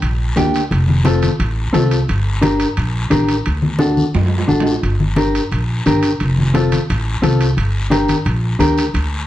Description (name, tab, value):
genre	latin, cumbia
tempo	175 BPM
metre	4/4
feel	straight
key	G minor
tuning	A4 = 440 Hz
part	upright bass	bass	0.0-9.3 s	F1 to F#2	-17 LUFS	equal	none
part	congas	percussion	0.0-9.1 s	none	-21 LUFS	left 2 dB	none
part	guiro	percussion	0.0-9.3 s	none	-30 LUFS	left 3 dB	none
part	timbales	percussion	0.0-9.1 s	none	-26 LUFS	right 5 dB	none
part	mellow electric guitar	accompaniment	0.4-8.8 s	Bb3 to Bb4	-17 LUFS	left 1 dB	none
room	light reverb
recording	dark, warm production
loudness	-14 LUFS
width	side -13 dB against mid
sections	0.0-9.3 A section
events	drum fill 3.8-4.8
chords	0.0 Gm; 0.7 F; 2.1 Gm; 3.5 D; 4.8 Gm; 6.2 F; 7.6 Gm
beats	0.03 0.37 | 0.72 1.06 1.40 1.75 | 2.09 2.43 2.77 3.12 | 3.46 3.80 4.15 4.49 | 4.83 5.17 5.52 5.86 | 6.20 6.55 6.89 7.23 | 7.57 7.92 8.26 8.60 | 8.95